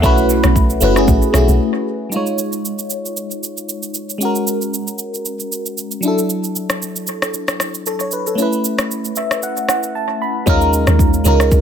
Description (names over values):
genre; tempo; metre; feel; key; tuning
amapiano; 115 BPM; 4/4; swing 55% on 16ths; unclear; A4 = 440 Hz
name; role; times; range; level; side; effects
FM electric piano; accompaniment; 0.0-11.6 s; F#3 to B5; -18 LUFS; equal; chorus, phaser
deep log drum bass; bass; 0.0-1.6, 10.5-11.6 s; F#1 to Eb2; -15 LUFS; equal; none
deep house drum kit; drums; 0.0-11.6 s; kick drum, rim click, shaker; -19 LUFS; equal; analog delay
room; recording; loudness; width
digital ambience; echo-heavy mix; -15 LUFS; side -8 dB against mid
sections
0.0-2.1 A section; 2.1-10.5 B section; 10.5-11.6 A section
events
drop 0.0-2.1, 10.5-11.6; break 1.6-2.1; FM electric piano fill 8.9-10.5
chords
0.0 B9sus4; 2.1 Eb9sus4; 4.2 Ab9sus4; 6.0 E9sus4; 8.4 B9sus4; 10.5 Eb9sus4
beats
| 0.04 0.56 1.08 1.60 | 2.12 2.65 3.17 3.69 | 4.21 4.73 5.25 5.78 | 6.30 6.82 7.34 7.86 | 8.38 8.90 9.43 9.95 | 10.47 10.99 11.51